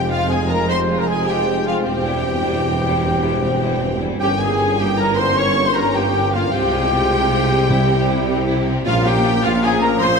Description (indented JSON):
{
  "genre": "cinematic, heroic adventure film score",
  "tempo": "103 BPM (dotted quarters)",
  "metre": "12/8",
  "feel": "straight",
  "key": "F harmonic minor",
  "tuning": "A4 = 440 Hz",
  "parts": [
    { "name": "warm symphonic violin section", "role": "melody", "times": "0.0-10.2 s", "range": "F5 to Db6", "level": "-24 LUFS", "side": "left 1 dB", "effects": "none" },
    { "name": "mellow large flute ensemble", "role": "second line", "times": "0.0-10.2 s", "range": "F5 to Db6", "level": "-26 LUFS", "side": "left 2 dB", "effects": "none" },
    { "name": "rich symphonic violin section", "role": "second line", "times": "0.0-10.1 s", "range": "G3 to Ab4", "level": "-27 LUFS", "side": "left 3 dB", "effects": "none" },
    { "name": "rich symphonic viola section", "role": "accompaniment", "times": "0.0-10.2 s", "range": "F4 to Db5", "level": "-25 LUFS", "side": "equal", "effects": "none" },
    { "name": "clear trombone section", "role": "sustained chords", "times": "0.0-10.2 s", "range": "G2 to Bb3", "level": "-26 LUFS", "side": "right 2 dB", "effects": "none" },
    { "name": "mellow French horn section", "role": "sustained chords", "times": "0.0-10.2 s", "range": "C4 to C5", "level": "-27 LUFS", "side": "left 5 dB", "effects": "none" },
    { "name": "mellow trumpet section", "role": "stabs", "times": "0.0-10.2 s", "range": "F4 to Db5", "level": "-24 LUFS", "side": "equal", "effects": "none" },
    { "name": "rich symphonic cello section", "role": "bass", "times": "0.0-10.2 s", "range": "E2 to C3", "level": "-24 LUFS", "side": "right 1 dB", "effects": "none" },
    { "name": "rich symphonic double bass section", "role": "bass", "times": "0.0-10.2 s", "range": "E1 to C2", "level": "-26 LUFS", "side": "right 3 dB", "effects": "none" },
    { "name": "warm tuba", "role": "bass", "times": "0.0-10.2 s", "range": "E1 to C2", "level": "-26 LUFS", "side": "right 2 dB", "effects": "none" },
    { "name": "timpani", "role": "percussion", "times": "0.0-0.1, 7.7-8.2 s", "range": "C3", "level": "-25 LUFS", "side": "left 1 dB", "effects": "none" }
  ],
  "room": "wet scoring stage reverb, RT60 2.0 s",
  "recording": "none",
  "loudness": "-15 LUFS",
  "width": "side -5 dB against mid",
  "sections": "0.0-10.2 A section",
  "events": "none",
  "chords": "0.0 Fm; 1.9 C/E; 4.2 Gdim; 6.5 Fm/C; 7.7 C; 8.9 Bbm"
}